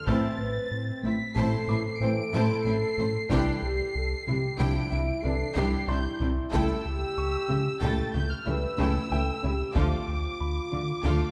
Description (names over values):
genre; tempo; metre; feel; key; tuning
cinematic, hybrid orchestral and electronic film score; 93 BPM; 5/4; straight; A minor; A4 = 441 Hz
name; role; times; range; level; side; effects
warm symphonic violin section; melody; 0.0-11.3 s; D6 to D7; -38 LUFS; equal; none
mellow French horn section; sustained chords; 0.0-11.3 s; F3 to C5; -36 LUFS; equal; none
warm symphonic violin section; second line; 0.1-11.3 s; D4 to A5; -41 LUFS; equal; none
rich symphonic viola section; accompaniment; 0.1-11.3 s; A3 to F4; -38 LUFS; equal; none
dark trombone section; sustained chords; 0.1-10.0 s; E3 to D4; -40 LUFS; equal; none
round analog bass; riff; 0.1-11.2 s; C2 to A3; -33 LUFS; equal; none
rich symphonic cello section; bass; 0.1-11.1 s; A2 to D3; -35 LUFS; equal; none
warm symphonic double bass section; bass; 0.1-11.1 s; A1 to D2; -36 LUFS; equal; none
taiko ensemble; drums; 0.1-10.4 s; none; -36 LUFS; equal; none
bright grand piano; texture; 0.1-11.3 s; D5 to E6; -45 LUFS; equal; delay
reverse cymbal; sound effects; 9.8-11.3 s; none; barely audible; none; none
room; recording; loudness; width
wet scoring stage reverb, RT60 1.9 s; dark, warm production; -28 LUFS; mono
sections
0.0-11.3 A section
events
none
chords
0.1 Am; 3.3 Cadd9; 6.5 A7/C#; 9.8 Dm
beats
| 0.08 0.73 1.37 2.02 2.66 | 3.31 3.95 4.60 5.24 5.89 | 6.53 7.18 7.82 8.47 9.11 | 9.76 10.40 11.05